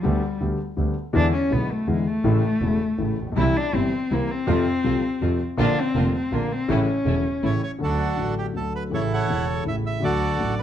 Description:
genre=tango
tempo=163 BPM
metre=3/4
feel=rubato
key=unclear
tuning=A4 = 440 Hz
part: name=warm cello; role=second line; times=0.0-7.6 s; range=G3 to E4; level=-24 LUFS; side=left 2 dB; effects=none
part: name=warm concert grand piano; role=accompaniment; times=0.0-10.6 s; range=E1 to G4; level=-25 LUFS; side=left 3 dB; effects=none
part: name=bright double bass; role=bass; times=0.0-10.6 s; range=E1 to F2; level=-26 LUFS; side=right 3 dB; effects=none
part: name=clear chamber string section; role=stabs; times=3.4-7.6 s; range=G3 to F4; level=-32 LUFS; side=right 4 dB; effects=none
part: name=bandoneon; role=melody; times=7.5-10.6 s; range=D4 to F#5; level=-26 LUFS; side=right 4 dB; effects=none
room=light reverb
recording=dark, warm production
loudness=-20 LUFS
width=side -10 dB against mid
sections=0.0-7.8 A section; 7.8-10.6 B section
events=cello solo 0.0-7.8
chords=0.0 G/D; 1.1 E7; 2.3 A; 3.4 C; 4.5 F; 5.6 Bb; 6.7 A; 7.8 D; 8.9 A; 10.0 D

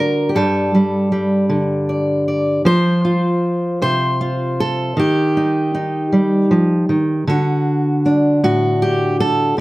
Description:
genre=folk, solo fingerstyle acoustic guitar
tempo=52 BPM (dotted quarters)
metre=6/8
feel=straight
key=unclear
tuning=A4 = 440 Hz
part: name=fingerpicked steel-string acoustic guitar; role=solo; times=0.0-9.6 s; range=G2 to D5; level=-14 LUFS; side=equal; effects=none
room=moderate studio reverb, RT60 0.7 s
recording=none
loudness=-14 LUFS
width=side -18 dB against mid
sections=0.0-9.6 A section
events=none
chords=0.4 Gsus2; 2.7 F5; 5.0 Eb; 7.3 D

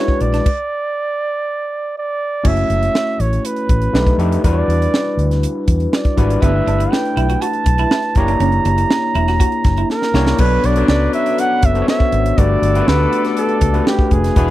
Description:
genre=polished 1980s jazz-funk pop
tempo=121 BPM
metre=4/4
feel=straight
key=B minor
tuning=A4 = 440 Hz
part: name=breathy flugelhorn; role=melody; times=0.0-14.5 s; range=G4 to A#5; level=-20 LUFS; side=right 3 dB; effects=slapback echo
part: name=overdriven tine electric piano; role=accompaniment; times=0.0-14.5 s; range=G3 to C#5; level=-19 LUFS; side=left 3 dB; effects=lush chorus
part: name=clean electric guitar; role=riff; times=0.0-0.4, 6.4-10.2 s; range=B3 to F#4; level=-25 LUFS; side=right 6 dB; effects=wide subtle chorus
part: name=tight funk drum kit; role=drums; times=0.1-14.5 s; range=crash cymbal, hi-hat, kick drum, snare drum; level=-17 LUFS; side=equal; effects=none
part: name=vintage muted fingered electric bass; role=bass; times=0.2-14.5 s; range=E1 to E#2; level=-17 LUFS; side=equal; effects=none
part: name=warm horn section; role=second line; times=10.4-14.5 s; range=F#3 to E5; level=-25 LUFS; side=left 4 dB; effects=none
room=little or no reverb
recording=dry, close 1970s-style studio recording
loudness=-13 LUFS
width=side -15 dB against mid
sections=0.0-2.4 A section; 2.4-10.4 B section; 10.4-14.5 C section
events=stop 0.5-2.4; drum fill 9.9-10.4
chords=0.5 N.C.; 2.4 F#m7; 3.9 B7alt; 4.4 Em9; 6.4 G69; 8.2 F#7b9b13; 10.4 Bm9; 12.4 Gmaj9

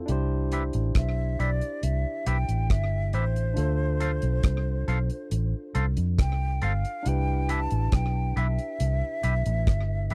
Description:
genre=lovers rock reggae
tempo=69 BPM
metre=4/4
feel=straight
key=C major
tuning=A4 = 441 Hz
part: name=barky tine electric piano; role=accompaniment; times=0.0-10.1 s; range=D4 to C5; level=-38 LUFS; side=equal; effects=none
part: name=vintage muted fingered electric bass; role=bass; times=0.1-10.1 s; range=G1 to F2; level=-28 LUFS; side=equal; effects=none
part: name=deep reggae drum kit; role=drums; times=0.1-10.1 s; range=hi-hat, kick drum, rim click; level=-29 LUFS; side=equal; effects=none
part: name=twangy electric guitar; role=stabs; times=0.5-10.1 s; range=G4 to F5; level=-32 LUFS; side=equal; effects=none
part: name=breathy mellow silver concert flute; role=melody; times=1.0-10.1 s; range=C5 to A5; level=-36 LUFS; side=equal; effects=tape echo
room=little or no reverb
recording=dry, close 1970s-style studio recording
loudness=-27 LUFS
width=mono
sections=0.1-10.1 A section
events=flute solo 0.1-10.1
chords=0.1 Cmaj7; 3.6 Dm7; 7.1 Cmaj7

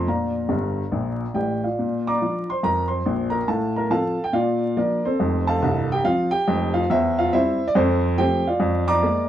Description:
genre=jazz, stride piano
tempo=141 BPM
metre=4/4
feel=swing 58% on 8ths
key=Bb major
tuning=A4 = 444 Hz
part: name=warm upright piano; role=solo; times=0.0-9.3 s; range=C1 to D6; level=-19 LUFS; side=equal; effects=none
room=moderate club ambience, RT60 0.5 s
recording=dark, warm production, vinyl crackle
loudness=-19 LUFS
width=side -11 dB against mid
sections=0.0-1.8 A section; 1.8-9.3 B section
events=upright piano fill 0.5-1.8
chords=0.1 Bb; 3.5 F/A; 4.3 Bb; 5.2 F; 6.9 C/E; 7.7 F; 8.6 Bb7/F

